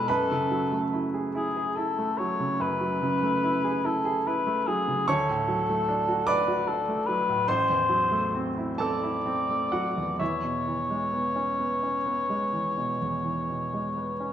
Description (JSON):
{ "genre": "classical, impressionist duo for cor anglais and grand piano", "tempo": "41-51 BPM (dotted quarters)", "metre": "12/8", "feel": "rubato", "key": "unclear", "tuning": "A4 = 438 Hz", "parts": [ { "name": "mellow cor anglais", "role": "melody", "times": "0.0-14.3 s", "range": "G#4 to D5", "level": "-27 LUFS", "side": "left 2 dB", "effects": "none" }, { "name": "clear baby grand piano", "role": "accompaniment", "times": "0.0-14.3 s", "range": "A1 to D6", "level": "-28 LUFS", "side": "right 2 dB", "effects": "none" } ], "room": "moderate recital hall reverb, RT60 1.6 s", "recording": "none", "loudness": "-24 LUFS", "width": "side -10 dB against mid", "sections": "0.0-14.3 A section", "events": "none", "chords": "0.1 F#m11; 5.1 Dmaj7; 7.5 Am6; 10.2 E6" }